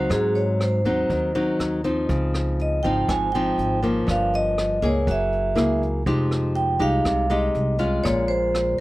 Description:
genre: bossa nova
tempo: 121 BPM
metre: 4/4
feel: straight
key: F minor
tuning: A4 = 439 Hz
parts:
  - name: vibraphone with medium hard mallets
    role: melody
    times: 0.0-8.8 s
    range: Ab4 to Ab5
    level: -23 LUFS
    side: right 1 dB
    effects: none
  - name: nylon-string guitar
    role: accompaniment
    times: 0.0-8.8 s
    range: G2 to Ab4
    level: -24 LUFS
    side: left 1 dB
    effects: none
  - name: upright bass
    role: bass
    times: 0.0-8.8 s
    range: F1 to Ab2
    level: -26 LUFS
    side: equal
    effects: none
  - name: jazz brush drum kit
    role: drums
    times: 0.1-8.7 s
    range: hi-hat, kick drum, rim click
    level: -30 LUFS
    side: equal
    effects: none
room: light reverb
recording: dry, close 1970s-style studio recording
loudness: -20 LUFS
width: side -18 dB against mid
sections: 0.0-8.8 A section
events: none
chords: 0.1 Ab7; 2.1 Dbmaj9; 4.1 Gm7b5; 5.1 Gb9; 6.1 Fm9; 8.1 Bbm7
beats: | 0.10 0.60 1.10 1.59 | 2.09 2.59 3.08 3.58 | 4.08 4.57 5.07 5.57 | 6.06 6.56 7.06 7.55 | 8.05 8.55

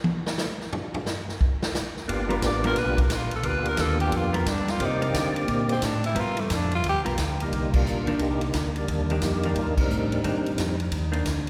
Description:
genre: soul jazz organ trio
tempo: 177 BPM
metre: 4/4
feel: swing 64% on 8ths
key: C dorian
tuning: A4 = 441 Hz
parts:
  - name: swinging big-band drum kit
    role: drums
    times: 0.0-11.5 s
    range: crash cymbal, hi-hat, kick drum, ride cymbal, snare drum, toms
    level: -31 LUFS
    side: equal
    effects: none
  - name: percussive tonewheel organ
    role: melody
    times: 2.1-10.8 s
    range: G3 to D5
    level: -31 LUFS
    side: equal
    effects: slow rotary speaker, overdrive, chorus vibrato
  - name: tonewheel organ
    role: bass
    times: 2.1-11.5 s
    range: G1 to D3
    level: -30 LUFS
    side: equal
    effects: overdrive, slow rotary speaker
  - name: vintage hollow-body jazz guitar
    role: accompaniment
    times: 2.3-11.2 s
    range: Eb3 to A#4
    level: -35 LUFS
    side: equal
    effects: none
  - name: growling tenor saxophone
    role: melody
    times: 2.5-7.0 s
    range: A3 to D5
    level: -31 LUFS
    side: equal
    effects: none
room: wet cathedral reverb, RT60 4.4 s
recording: recorded in a church or concert hall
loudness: -26 LUFS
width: mono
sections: 0.0-7.5 A section; 7.5-11.5 B section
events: tenor saxophone solo 0.0-7.5; drum solo 0.0-2.1; band accent 7.7, 9.7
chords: 0.0 N.C.; 2.1 G7#9; 4.8 Cm9; 6.2 G7#9; 7.5 Cm9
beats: 0.04 0.38 | 0.72 1.06 1.40 1.74 | 2.08 2.42 2.77 3.10 | 3.45 3.79 4.13 4.47 | 4.81 5.14 5.49 5.82 | 6.16 6.50 6.84 7.18 | 7.52 7.86 8.20 8.54 | 8.88 9.21 9.55 9.89 | 10.23 10.57 10.91 11.25

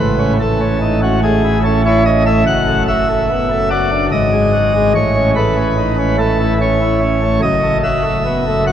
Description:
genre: classical, chorale-style piece for pipe organ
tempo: 72 BPM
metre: 3/4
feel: rubato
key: unclear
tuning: A4 = 440 Hz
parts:
  - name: pipe organ, principal chorus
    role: solo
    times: 0.0-8.7 s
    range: F#1 to F#5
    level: -12 LUFS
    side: equal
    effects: none
room: wet cathedral reverb, RT60 4.3 s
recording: worn, warbling old tape, cassette tape, warbly pitch drift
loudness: -12 LUFS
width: side -9 dB against mid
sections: 0.0-8.7 A section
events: none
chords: 0.0 A; 2.5 D/F#; 4.1 G#5; 5.0 A; 7.4 F#m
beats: 0.80 1.63 | 2.47 3.30 4.13 | 4.95 5.78 6.60 | 7.42 8.25

